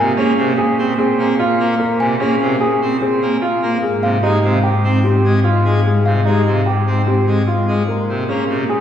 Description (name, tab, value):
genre	classical, minimalist pattern music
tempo	148 BPM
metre	5/4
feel	straight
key	Bb dorian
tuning	A4 = 437 Hz
part	dark concert grand piano	melody	0.0-8.8 s	G4 to Ab5	-21 LUFS	left 2 dB	none
part	pipe organ, full organ	accompaniment	0.0-8.6 s	C3 to C4	-20 LUFS	equal	none
part	small celesta	arpeggios	0.0-6.3 s	F5 to Ab5	-26 LUFS	equal	none
part	warm cello	bass	0.0-8.8 s	Ab2 to Bb2	-18 LUFS	equal	none
part	clear concert grand piano	arpeggios	0.2-8.8 s	C4 to Ab4	-20 LUFS	right 2 dB	none
room	wet cathedral reverb, RT60 4.3 s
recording	recorded in a church or concert hall, small room reverb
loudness	-13 LUFS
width	side -9 dB against mid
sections	0.0-8.8 A section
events	none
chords	0.0 Bbm7; 3.8 Abmaj7; 7.9 Bbm7